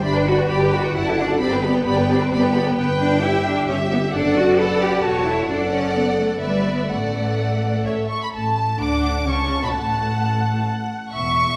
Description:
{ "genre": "quick classical-period movement for string orchestra", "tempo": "130 BPM", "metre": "3/4", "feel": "rubato", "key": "D major", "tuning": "A4 = 440 Hz", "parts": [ { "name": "clear studio violin section", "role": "melody", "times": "0.0-11.6 s", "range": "E5 to D6", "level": "-28 LUFS", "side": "equal", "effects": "none" }, { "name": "rich studio violin section", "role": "second line", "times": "0.0-11.6 s", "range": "B4 to A5", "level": "-30 LUFS", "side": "equal", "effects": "none" }, { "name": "rich studio viola section", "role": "accompaniment", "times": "0.0-10.6 s", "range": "A3 to B4", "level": "-28 LUFS", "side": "equal", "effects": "none" }, { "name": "rich studio cello section", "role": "bass", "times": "0.0-11.5 s", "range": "E2 to A4", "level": "-24 LUFS", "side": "equal", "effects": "none" }, { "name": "rich studio double bass section", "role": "bass", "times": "0.0-11.5 s", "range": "E1 to D2", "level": "-27 LUFS", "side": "equal", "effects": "none" } ], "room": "wet recital hall reverb, RT60 1.6 s", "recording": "recorded in a church or concert hall", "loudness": "-20 LUFS", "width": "mono", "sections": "0.0-8.3 A section; 8.3-11.6 B section", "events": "none", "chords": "0.0 G; 1.0 D/F#; 1.4 G; 2.8 Em/G; 3.7 G6; 4.1 D/F#; 5.0 A/E; 5.5 D/F#; 6.4 Em7/G; 6.9 D/A; 9.7 F#m/A" }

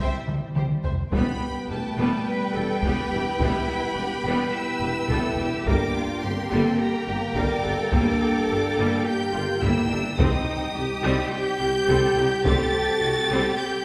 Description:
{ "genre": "cinematic, epic orchestral film score", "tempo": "106 BPM", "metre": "4/4", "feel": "straight", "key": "unclear", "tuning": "A4 = 439 Hz", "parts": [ { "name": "rich symphonic violin section", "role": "melody", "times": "0.0-13.8 s", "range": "C5 to A6", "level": "-34 LUFS", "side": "equal", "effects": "none" }, { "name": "warm symphonic violin section", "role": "second line", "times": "0.0-13.8 s", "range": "G4 to G5", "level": "-34 LUFS", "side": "equal", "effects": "none" }, { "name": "clear symphonic viola section", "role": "accompaniment", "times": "0.0-13.6 s", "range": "G3 to C5", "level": "-31 LUFS", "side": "equal", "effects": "none" }, { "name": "warm French horn section", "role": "sustained chords", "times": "0.0-13.8 s", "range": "G3 to A4", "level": "-32 LUFS", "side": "equal", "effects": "none" }, { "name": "rich symphonic cello section", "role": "bass", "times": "0.0-13.8 s", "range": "G3 to B4", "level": "-33 LUFS", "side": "equal", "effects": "none" }, { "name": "rich symphonic double bass section", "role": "bass", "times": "0.0-13.4 s", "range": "E1 to C2", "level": "-35 LUFS", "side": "equal", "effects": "none" }, { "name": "taiko ensemble", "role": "drums", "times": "0.0-13.0 s", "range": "none", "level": "-29 LUFS", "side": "equal", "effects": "none" }, { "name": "mellow trombone section", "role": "sustained chords", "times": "1.1-13.8 s", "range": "G3 to C4", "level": "-36 LUFS", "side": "equal", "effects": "none" }, { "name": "warm tuba", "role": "bass", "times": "1.1-13.4 s", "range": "E1 to C2", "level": "-34 LUFS", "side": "equal", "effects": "none" } ], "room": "wet recital hall reverb, RT60 1.6 s", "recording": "recorded in a church or concert hall", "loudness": "-24 LUFS", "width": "mono", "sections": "0.0-1.1 A section; 1.1-13.8 B section", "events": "drum fill 0.3-1.1", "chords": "0.0 C; 1.1 Em; 5.7 Gm; 10.2 Cm" }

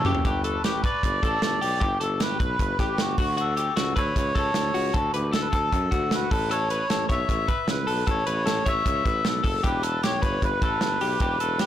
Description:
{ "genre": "jangly indie pop", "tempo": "153 BPM", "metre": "4/4", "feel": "straight", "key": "unclear", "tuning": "A4 = 439 Hz", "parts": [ { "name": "melodica", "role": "melody", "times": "0.0-11.7 s", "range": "F#4 to E5", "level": "-27 LUFS", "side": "right 1 dB", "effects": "plate reverb" }, { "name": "twelve-string electric guitar", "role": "arpeggios", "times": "0.0-11.7 s", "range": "F#4 to C#5", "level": "-28 LUFS", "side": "left 4 dB", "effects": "plate reverb" }, { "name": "warm tuba", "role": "bass", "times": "0.0-11.7 s", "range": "E1 to F#2", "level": "-29 LUFS", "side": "equal", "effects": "none" }, { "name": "modern studio drum kit", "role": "drums", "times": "0.0-11.7 s", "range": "hi-hat, kick drum, snare drum, toms", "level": "-27 LUFS", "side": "right 1 dB", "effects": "none" } ], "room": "moderate studio reverb, RT60 0.6 s", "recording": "blown-out, overdriven recording, overdrive", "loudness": "-22 LUFS", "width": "side -11 dB against mid", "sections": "0.2-11.7 A section", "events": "drum fill 0.0", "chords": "0.2 G; 3.2 D; 6.3 A; 9.6 Em" }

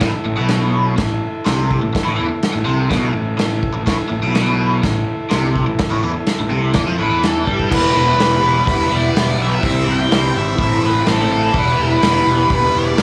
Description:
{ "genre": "garage rock duo or trio", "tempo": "125 BPM", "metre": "4/4", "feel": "straight", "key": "unclear", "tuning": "A4 = 440 Hz", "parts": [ { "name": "overdriven combo organ", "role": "sustained chords", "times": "0.0-13.0 s", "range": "E4 to E5", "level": "-28 LUFS", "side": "equal", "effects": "none" }, { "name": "overdriven electric guitar", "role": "riff", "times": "0.0-13.0 s", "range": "A2 to E4", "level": "-22 LUFS", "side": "equal", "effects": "phaser" }, { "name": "fuzz picked electric bass", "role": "bass", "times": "0.0-13.0 s", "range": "E1 to G2", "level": "-22 LUFS", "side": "equal", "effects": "overdrive, tube saturation" }, { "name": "vintage drum kit", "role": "drums", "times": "0.0-13.0 s", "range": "crash cymbal, hi-hat, kick drum, snare drum", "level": "-23 LUFS", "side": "equal", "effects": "none" }, { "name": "octave-fuzz lead guitar", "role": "melody", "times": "7.0-13.0 s", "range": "A4 to G5", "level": "-21 LUFS", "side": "equal", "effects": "distortion" } ], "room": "light reverb", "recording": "studio reverb", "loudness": "-16 LUFS", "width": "mono", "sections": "0.0-7.7 A section; 7.7-13.0 B section", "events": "none", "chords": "0.0 A5; 7.7 Em; 9.6 C; 10.6 Am; 11.5 Em" }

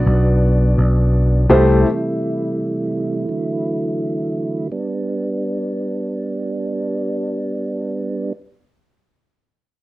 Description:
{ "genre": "pop", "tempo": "84 BPM", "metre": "4/4", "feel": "straight", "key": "G major", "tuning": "A4 = 440 Hz", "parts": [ { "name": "warm concert grand piano", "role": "accompaniment", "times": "0.0-1.9 s", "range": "B2 to D5", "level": "-18 LUFS", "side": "left 1 dB", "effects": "cassette tape" }, { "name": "tonewheel organ", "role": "sustained chords", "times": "0.0-8.3 s", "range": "C3 to E4", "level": "-21 LUFS", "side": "right 2 dB", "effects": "overdrive, slow rotary speaker, cassette tape" }, { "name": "picked electric bass", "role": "bass", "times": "0.0-1.8 s", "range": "B1 to C2", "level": "-14 LUFS", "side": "equal", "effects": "none" } ], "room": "light reverb", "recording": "home recording on cassette", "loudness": "-17 LUFS", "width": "side -18 dB against mid", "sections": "0.0-4.7 A section; 4.7-7.6 B section", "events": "none", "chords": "0.0 Bm; 1.5 C6; 3.3 Dadd9; 4.7 G" }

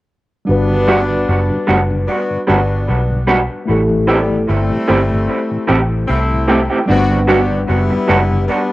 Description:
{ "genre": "reggae", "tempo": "75 BPM", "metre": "4/4", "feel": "swing 55% on 16ths", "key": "G major", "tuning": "A4 = 440 Hz", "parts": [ { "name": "clear horn section", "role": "second line", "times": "0.5-8.7 s", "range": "E3 to G4", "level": "-20 LUFS", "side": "left 1 dB", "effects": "tape echo" }, { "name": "mellow tine electric piano", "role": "accompaniment", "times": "0.5-8.7 s", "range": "G3 to F#5", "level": "-19 LUFS", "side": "left 1 dB", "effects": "medium stereo tremolo, tape echo" }, { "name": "vintage muted fingered electric bass", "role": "bass", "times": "0.5-8.5 s", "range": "F#1 to C2", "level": "-17 LUFS", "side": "equal", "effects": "none" }, { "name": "mellow tonewheel organ", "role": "accompaniment", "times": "0.7-8.4 s", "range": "G2 to G4", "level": "-27 LUFS", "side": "left 2 dB", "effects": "none" }, { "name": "electric guitar through a small old amp", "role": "stabs", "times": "0.9-8.2 s", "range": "E3 to G4", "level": "-17 LUFS", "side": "right 2 dB", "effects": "tremolo, tape echo" } ], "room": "moderate spring reverb, RT60 1.6 s, digital ambience", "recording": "home recording on cassette", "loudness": "-12 LUFS", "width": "side -17 dB against mid", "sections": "0.5-6.9 A section; 6.9-8.7 B section", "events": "none", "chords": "0.5 Gmaj7; 3.7 Am7; 6.9 Gmaj7" }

